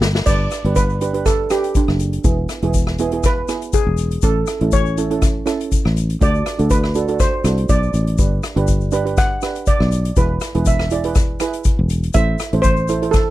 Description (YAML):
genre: calypso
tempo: 121 BPM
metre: 4/4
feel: swing 53% on 16ths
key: G major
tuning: A4 = 440 Hz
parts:
  - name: fingered electric bass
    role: bass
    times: 0.0-13.3 s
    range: E1 to D2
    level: -19 LUFS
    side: left 1 dB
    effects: none
  - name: street-band drum kit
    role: drums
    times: 0.0-13.3 s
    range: crash cymbal, hi-hat, kick drum, rim click, snare drum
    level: -19 LUFS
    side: left 1 dB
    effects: none
  - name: egg shaker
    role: percussion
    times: 0.0-13.3 s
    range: none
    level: -32 LUFS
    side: left 27 dB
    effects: none
  - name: steel pan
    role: melody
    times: 0.3-13.3 s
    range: D4 to F#5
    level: -22 LUFS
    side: right 2 dB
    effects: none
  - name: steel pan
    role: accompaniment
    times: 0.3-13.2 s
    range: B3 to D5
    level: -23 LUFS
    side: right 6 dB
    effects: none
room: little or no reverb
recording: dry, close 1970s-style studio recording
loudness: -15 LUFS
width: side -15 dB against mid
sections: 0.3-13.3 A section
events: drum fill 0.0; steel pan solo 0.3-13.3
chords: 0.3 Gmaj7; 2.2 E; 4.2 A; 6.2 D; 8.2 Gmaj7; 10.2 E; 12.2 Am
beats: | 0.27 0.76 1.26 1.75 | 2.25 2.74 3.24 3.73 | 4.23 4.72 5.22 5.71 | 6.21 6.70 7.20 7.69 | 8.19 8.68 9.18 9.68 | 10.17 10.66 11.16 11.65 | 12.15 12.64 13.14